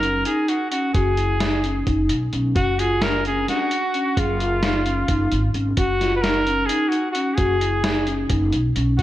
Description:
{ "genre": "progressive instrumental, band music in an uneven meter", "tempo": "261 BPM (eighths)", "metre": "7/8", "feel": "straight", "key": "F# major", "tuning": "A4 = 440 Hz", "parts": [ { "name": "clear trumpet", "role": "melody", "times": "0.0-9.0 s", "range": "E#4 to B4", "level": "-24 LUFS", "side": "equal", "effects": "analog delay" }, { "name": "vibraphone with soft mallets", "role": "arpeggios", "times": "0.0-9.0 s", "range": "C#4 to G#4", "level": "-23 LUFS", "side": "left 1 dB", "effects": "slapback echo" }, { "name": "upright bass", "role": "bass", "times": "0.0-9.0 s", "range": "F#1 to B1", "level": "-24 LUFS", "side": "equal", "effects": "none" }, { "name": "lo-fi sampler-style drum kit", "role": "drums", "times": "0.0-9.0 s", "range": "hi-hat, kick drum, snare drum", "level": "-25 LUFS", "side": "equal", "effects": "none" } ], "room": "moderate lush hall reverb, RT60 1.7 s, small room ambience", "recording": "big arena sound", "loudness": "-18 LUFS", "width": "side -14 dB against mid", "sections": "0.0-9.0 A section", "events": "none", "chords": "0.0 F#; 1.0 E6/F# (rootless); 2.6 F#sus2; 4.2 C#add9/F#; 5.8 F#; 7.4 E6/F# (rootless)", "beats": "0.03 0.26 0.49 0.72 | 0.95 1.18 1.41 1.64 1.87 2.10 2.33 | 2.56 2.79 3.02 3.25 3.48 3.71 3.94 | 4.17 4.40 4.63 4.86 5.09 5.32 5.55 | 5.78 6.00 6.24 6.46 6.69 6.92 7.15 | 7.38 7.61 7.84 8.07 8.30 8.53 8.76 | 8.99" }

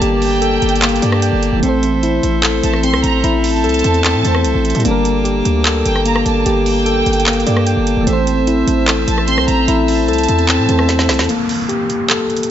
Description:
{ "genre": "hip hop, trap", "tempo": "149 BPM", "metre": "4/4", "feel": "half-time", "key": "A phrygian", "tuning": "A4 = 440 Hz", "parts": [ { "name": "soft electric-piano-like synth keys", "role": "accompaniment", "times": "0.0-11.3 s", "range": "E3 to G5", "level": "-21 LUFS", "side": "right 4 dB", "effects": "chorus, low-pass filter" }, { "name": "pipe organ, clarinet reed", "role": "sustained chords", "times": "0.0-11.3 s", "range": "Bb3 to E6", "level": "-25 LUFS", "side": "right 2 dB", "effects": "none" }, { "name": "mellow tine electric piano", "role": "arpeggios", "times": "0.0-12.5 s", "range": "Bb3 to A4", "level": "-16 LUFS", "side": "left 4 dB", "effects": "low-pass filter, tape echo" }, { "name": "hard-hitting 808-style bass", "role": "bass", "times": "0.0-11.3 s", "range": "F1 to A2", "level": "-18 LUFS", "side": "right 1 dB", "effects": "none" }, { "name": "trap drum kit", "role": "drums", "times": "0.0-12.5 s", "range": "handclaps, hi-hat, rim click, snare drum", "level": "-19 LUFS", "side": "right 1 dB", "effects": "none" }, { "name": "warm studio violin section", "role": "second line", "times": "0.2-11.3 s", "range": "G5 to C6", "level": "-22 LUFS", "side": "right 3 dB", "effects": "tape echo" }, { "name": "downlifter", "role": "sound effects", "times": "11.3-12.5 s", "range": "none", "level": "-27 LUFS", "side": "right 2 dB", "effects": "none" } ], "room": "light reverb, digital ambience", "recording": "nothing above 7.7 kHz", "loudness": "-12 LUFS", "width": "side -10 dB against mid", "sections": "0.0-11.3 A section; 11.3-12.5 B section", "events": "synth keys fill 0.8-1.6; drum fill 10.9-11.3; break 11.3-12.5", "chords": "0.0 Gmadd9; 1.6 Am; 4.8 Gmadd9; 8.1 Am; 11.3 Gmadd9", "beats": "| 0.02 0.42 0.82 1.22 | 1.63 2.03 2.43 2.83 | 3.24 3.64 4.04 4.45 | 4.85 5.25 5.65 6.06 | 6.46 6.86 7.26 7.67 | 8.07 8.47 8.88 9.28 | 9.68 10.08 10.49 10.89 | 11.29 11.69 12.10 12.50" }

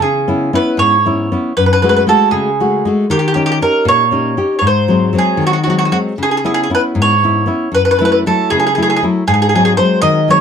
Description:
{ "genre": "italian folk", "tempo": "78 BPM (dotted quarters)", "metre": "6/8", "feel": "straight", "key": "C# minor", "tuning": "A4 = 439 Hz", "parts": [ { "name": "bowl-back mandolin", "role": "melody", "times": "0.0-10.4 s", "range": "F#4 to D#5", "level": "-13 LUFS", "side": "right 2 dB", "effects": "none" }, { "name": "nylon-string guitar", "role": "accompaniment", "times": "0.0-10.4 s", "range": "F#2 to G4", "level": "-14 LUFS", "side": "left 2 dB", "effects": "none" } ], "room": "moderate studio reverb, RT60 0.6 s", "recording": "dark, warm production", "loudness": "-11 LUFS", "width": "side -7 dB against mid", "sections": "0.0-10.4 A section", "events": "none", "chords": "0.0 C#m7; 1.6 F#madd9; 3.1 D#7; 4.6 G#7; 6.2 C#m7; 7.7 F#m7; 9.3 G#7", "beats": "| 0.00 0.78 | 1.56 2.33 | 3.10 3.87 | 4.64 5.41 | 6.19 6.97 | 7.74 8.50 | 9.27 10.04" }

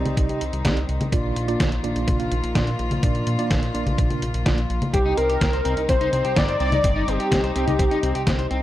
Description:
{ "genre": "italo disco", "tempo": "126 BPM", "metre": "4/4", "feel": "straight", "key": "C minor", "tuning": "A4 = 441 Hz", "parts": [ { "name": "rich chamber string section", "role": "sustained chords", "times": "0.0-8.6 s", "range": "Eb3 to F4", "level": "-30 LUFS", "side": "left 2 dB", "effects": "none" }, { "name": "tine electric piano", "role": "stabs", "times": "0.0-4.6 s", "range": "Bb2 to F5", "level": "-27 LUFS", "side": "right 3 dB", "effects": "fast stereo tremolo, analog delay" }, { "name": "chorused synth bass", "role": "bass", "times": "0.0-8.6 s", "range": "G1 to Bb2", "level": "-26 LUFS", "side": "equal", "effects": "none" }, { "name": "detuned 8-bit digital drum machine", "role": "drums", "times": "0.1-8.6 s", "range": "congas, hi-hat, snare drum", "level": "-26 LUFS", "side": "equal", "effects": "none" }, { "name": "electronic kick drum", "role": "drums", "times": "0.2-8.4 s", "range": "none", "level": "-23 LUFS", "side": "equal", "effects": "none" }, { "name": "wide unison lead", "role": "melody", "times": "4.9-8.2 s", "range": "G4 to D5", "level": "-23 LUFS", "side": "left 1 dB", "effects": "cassette tape, analog delay" }, { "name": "electric guitar at the edge of break-up", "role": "arpeggios", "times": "4.9-8.6 s", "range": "C4 to C5", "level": "-28 LUFS", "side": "left 2 dB", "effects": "analog delay" } ], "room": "little or no reverb", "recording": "dry, gritty hardware recording", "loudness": "-19 LUFS", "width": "side -14 dB against mid", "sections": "0.0-8.6 A section", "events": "none", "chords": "0.0 Cmadd9; 1.1 Bb; 4.9 Cmadd9", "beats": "0.17 0.65 | 1.13 1.60 2.08 2.56 | 3.03 3.51 3.98 4.46 | 4.94 5.41 5.89 6.37 | 6.84 7.32 7.79 8.27" }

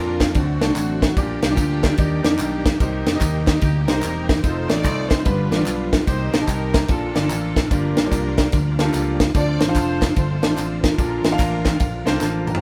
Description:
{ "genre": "uptempo gospel", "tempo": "147 BPM", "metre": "4/4", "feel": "swing 64% on 8ths", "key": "unclear", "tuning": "A4 = 441 Hz", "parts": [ { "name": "warm studio string section", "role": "melody", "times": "0.0-12.2 s", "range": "A3 to D5", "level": "-32 LUFS", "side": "equal", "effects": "none" }, { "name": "clear grand piano", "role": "accompaniment", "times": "0.0-12.6 s", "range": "G2 to Bb5", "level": "-27 LUFS", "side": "equal", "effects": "none" }, { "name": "bright tonewheel organ", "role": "sustained chords", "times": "0.0-12.6 s", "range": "D3 to D5", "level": "-35 LUFS", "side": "equal", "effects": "none" }, { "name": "fingered electric bass", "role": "bass", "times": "0.0-12.6 s", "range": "E1 to F2", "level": "-26 LUFS", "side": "equal", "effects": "none" }, { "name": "tight funk drum kit", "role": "drums", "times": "0.2-12.6 s", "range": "kick drum, ride cymbal, snare drum, toms", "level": "-22 LUFS", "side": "equal", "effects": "none" }, { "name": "handclaps and tambourine", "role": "percussion", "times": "0.2-12.5 s", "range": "none", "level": "-38 LUFS", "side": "equal", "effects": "none" } ], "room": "moderate studio reverb, RT60 0.6 s", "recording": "band playing live in one room", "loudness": "-20 LUFS", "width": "mono", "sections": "0.0-12.6 A section", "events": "grand piano fill 11.4-12.6; drum fill 12.2-12.6", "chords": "0.3 D7; 1.2 Gm7/Bb; 2.0 Ebmaj7; 2.8 Cm7; 4.4 F7; 5.3 G7; 6.1 Cm7; 6.9 Bbmaj7; 7.7 Gm7; 9.3 Dm7; 11.0 Bbmaj9", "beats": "0.35 0.76 | 1.17 1.58 1.99 2.40 | 2.80 3.21 3.62 4.03 | 4.44 4.85 5.26 5.67 | 6.08 6.49 6.89 7.30 | 7.71 8.12 8.53 8.94 | 9.35 9.76 10.17 10.58 | 10.98 11.39 11.80 12.21" }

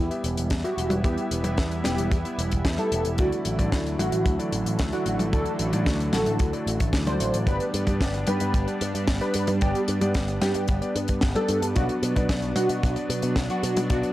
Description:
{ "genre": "italo disco", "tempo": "112 BPM", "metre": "4/4", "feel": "straight", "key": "E minor", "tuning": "A4 = 441 Hz", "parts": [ { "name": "wide unison lead", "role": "melody", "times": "0.0-14.1 s", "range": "F#4 to C5", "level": "-29 LUFS", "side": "equal", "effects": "ensemble chorus, tape echo" }, { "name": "lush unison pad", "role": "sustained chords", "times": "0.0-14.1 s", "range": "D3 to E4", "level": "-30 LUFS", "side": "right 1 dB", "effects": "chorus" }, { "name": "warm electric grand piano", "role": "stabs", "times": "0.0-14.1 s", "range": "A3 to G5", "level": "-33 LUFS", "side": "left 2 dB", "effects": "none" }, { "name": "picked electric bass with an envelope filter", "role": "bass", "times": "0.0-14.0 s", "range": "E1 to B2", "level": "-28 LUFS", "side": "equal", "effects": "none" }, { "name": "tight funk drum kit", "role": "drums", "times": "0.1-14.1 s", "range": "hi-hat, snare drum, toms", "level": "-30 LUFS", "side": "left 1 dB", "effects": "studio reverb" }, { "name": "kick drum", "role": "drums", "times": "0.5-14.0 s", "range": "none", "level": "-25 LUFS", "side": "equal", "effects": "studio reverb" } ], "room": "studio ambience", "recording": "dry, gritty hardware recording, transformer saturation, vinyl crackle", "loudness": "-22 LUFS", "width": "side -15 dB against mid", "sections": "0.0-14.1 A section", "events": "none", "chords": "0.0 Em; 3.2 Dadd9; 7.5 G; 11.8 Bm", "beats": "0.51 | 1.04 1.58 2.11 2.65 | 3.19 3.72 4.26 4.79 | 5.33 5.86 6.40 6.94 | 7.47 8.01 8.54 9.08 | 9.61 10.15 10.69 11.22 | 11.76 12.29 12.83 13.36 | 13.90" }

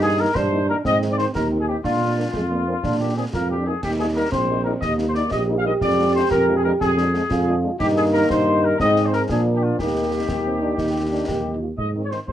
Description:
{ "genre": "military-style march for wind band", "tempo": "121 BPM (dotted quarters)", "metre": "6/8", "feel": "straight", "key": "Eb major", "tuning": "A4 = 443 Hz", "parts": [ { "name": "mellow trumpet section", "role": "melody", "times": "0.0-12.3 s", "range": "F4 to F5", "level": "-23 LUFS", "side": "left 2 dB", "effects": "none" }, { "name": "warm euphonium", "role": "second line", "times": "0.0-12.3 s", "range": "Ab3 to G4", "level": "-24 LUFS", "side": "right 3 dB", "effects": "none" }, { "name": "mellow French horn section", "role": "accompaniment", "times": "0.0-12.2 s", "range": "Eb3 to Eb4", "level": "-26 LUFS", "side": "left 2 dB", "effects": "none" }, { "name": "mellow tuba", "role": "bass", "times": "0.0-12.3 s", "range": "Bb1 to Bb2", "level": "-23 LUFS", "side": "right 1 dB", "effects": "none" }, { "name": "concert snare drum, concert bass drum and clash cymbals", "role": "drums", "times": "0.4-12.3 s", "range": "none", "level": "-31 LUFS", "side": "equal", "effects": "none" } ], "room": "light reverb", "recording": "worn, warbling old tape, cassette tape, warbly pitch drift", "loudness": "-18 LUFS", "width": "side -11 dB against mid", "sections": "0.0-11.8 A section", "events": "none", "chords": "0.0 Eb/G; 0.8 Ab; 1.8 Bb; 3.8 Eb; 5.8 Ddim/F; 7.8 Eb/G; 8.8 Ab; 9.3 Bb7; 9.8 Eb; 11.8 Ab", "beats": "0.35 | 0.85 1.34 | 1.84 2.34 | 2.83 3.33 | 3.83 4.33 | 4.82 5.32 | 5.82 6.31 | 6.81 7.31 | 7.80 8.30 | 8.80 9.29 | 9.79 10.29 | 10.78 11.28 | 11.78 12.28" }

